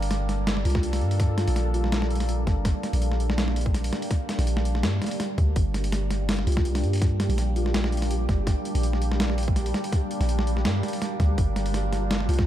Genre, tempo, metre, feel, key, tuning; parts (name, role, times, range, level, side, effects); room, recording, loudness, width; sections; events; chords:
half-time drum and bass; 165 BPM; 4/4; swing 54% on 16ths, half-time; G minor; A4 = 440 Hz
deep dark ambient pad; sustained chords; 0.0-12.5 s; G3 to C5; -31 LUFS; right 1 dB; chorus, built-in reverb, sidechain pumping
long sustained 808-style bass; bass; 0.0-12.5 s; G1 to G2; -25 LUFS; equal; tube saturation
boom bap sampler-style drum kit; drums; 0.0-12.5 s; hi-hat, snare drum; -30 LUFS; equal; overdrive
buzzing marimba with soft mallets; melody; 0.7-2.1, 6.5-7.7, 12.3-12.4 s; D4 to F4; -35 LUFS; left 2 dB; ping-pong delay
electronic kick drum; drums; 0.8-12.5 s; -24 LUFS; equal
flickering grainy texture; texture; 5.9-12.5 s; G3 to G4; -36 LUFS; equal; built-in reverb, analog chorus
light reverb, digital ambience; -22 LUFS; side -12 dB against mid
0.0-12.5 A section
0.0 Gmadd9